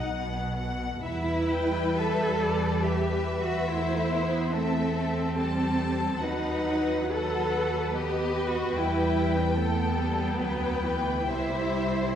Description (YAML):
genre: classical, slow romantic movement for string orchestra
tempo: 70 BPM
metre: 3/4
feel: uneven beats, rubato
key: E minor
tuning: A4 = 441 Hz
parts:
  - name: warm studio violin section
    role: melody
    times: 0.0-12.2 s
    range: D5 to A5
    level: -34 LUFS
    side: left 4 dB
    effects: none
  - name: rich studio violin section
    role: second line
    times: 0.0-12.2 s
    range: A4 to C5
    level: -32 LUFS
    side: left 2 dB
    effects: none
  - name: warm studio viola section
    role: accompaniment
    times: 0.0-12.2 s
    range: E3 to B3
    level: -34 LUFS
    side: equal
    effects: none
  - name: rich studio cello section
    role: bass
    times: 0.1-12.2 s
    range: B2 to A4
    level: -29 LUFS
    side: right 1 dB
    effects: none
  - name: warm studio double bass section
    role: bass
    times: 0.1-12.2 s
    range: B1 to E2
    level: -31 LUFS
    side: right 2 dB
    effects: none
room: wet concert hall reverb, RT60 1.9 s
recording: heard from further back in the room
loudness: -25 LUFS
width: side -9 dB against mid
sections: 0.0-1.0 A section; 1.0-12.2 B section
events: none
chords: 0.0 B5; 1.0 Em; 3.7 Am/E; 6.2 B7/D#; 8.8 Em; 11.3 C